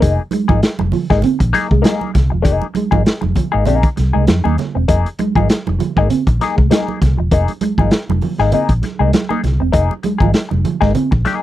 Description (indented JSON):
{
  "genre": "funk",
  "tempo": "99 BPM",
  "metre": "4/4",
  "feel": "swing 56% on 16ths",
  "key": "F minor",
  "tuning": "A4 = 438 Hz",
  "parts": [
    { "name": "semi-hollow electric guitar", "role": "accompaniment", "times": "0.0-11.4 s", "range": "Bb3 to Ab4", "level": "-18 LUFS", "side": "left 6 dB", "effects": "wah" },
    { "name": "vintage muted fingered electric bass", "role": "bass", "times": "0.0-11.2 s", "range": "E1 to F2", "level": "-16 LUFS", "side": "equal", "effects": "none" },
    { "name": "crunchy breakbeat drum kit", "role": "drums", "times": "0.0-11.4 s", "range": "hi-hat, kick drum, snare drum", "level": "-16 LUFS", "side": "equal", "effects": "none" },
    { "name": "congas", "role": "percussion", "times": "0.0-11.4 s", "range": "none", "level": "-23 LUFS", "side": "right 8 dB", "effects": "none" },
    { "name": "mellow electric guitar", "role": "riff", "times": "0.2-11.3 s", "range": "F3 to C4", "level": "-20 LUFS", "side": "right 4 dB", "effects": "ensemble chorus" }
  ],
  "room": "little or no reverb",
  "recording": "dry, close 1970s-style studio recording",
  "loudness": "-13 LUFS",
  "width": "side -14 dB against mid",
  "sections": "0.0-11.4 A section",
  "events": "none",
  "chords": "0.0 Fm7"
}